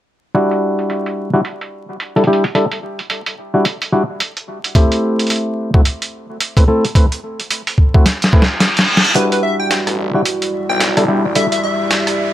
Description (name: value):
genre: glitch hop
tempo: 109 BPM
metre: 4/4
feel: swing 60% on 16ths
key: E minor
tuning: A4 = 442 Hz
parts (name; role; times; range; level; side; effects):
- mellow clav; stabs; 0.3-11.5 s; G3 to B4; -17 LUFS; equal; sidechain pumping, low-pass filter, dub echo
- boom bap sampler-style drum kit; drums; 0.3-12.2 s; hi-hat, rim click, snare drum; -17 LUFS; equal; high-pass filter on hats, low-pass filter on hats, small room reverb, high-pass filter on snare, low-pass filter on snare
- electronic kick drum; drums; 4.8-8.5 s; none; -10 LUFS; equal; small room reverb
- reverse cymbal and riser; sound effects; 8.3-12.3 s; none; -20 LUFS; equal; none
- plucky unison lead; melody; 9.2-12.3 s; B4 to G5; -20 LUFS; equal; dub echo
- dark analog pad; sustained chords; 9.2-12.3 s; G3 to D5; -21 LUFS; right 1 dB; chorus, sidechain pumping
- phased detuned saw bass; bass; 9.2-11.3 s; E1 to B1; -23 LUFS; left 1 dB; phaser, high-pass filter
room: light reverb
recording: vinyl crackle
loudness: -13 LUFS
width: side -13 dB against mid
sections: 0.3-9.2 A section; 9.2-12.3 B section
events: drum fill 8.1-9.2; reverse cymbal 8.3-9.2; build-up 9.2-12.3; riser 9.2-12.3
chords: 0.3 Em9; 4.8 Am7; 9.2 Em9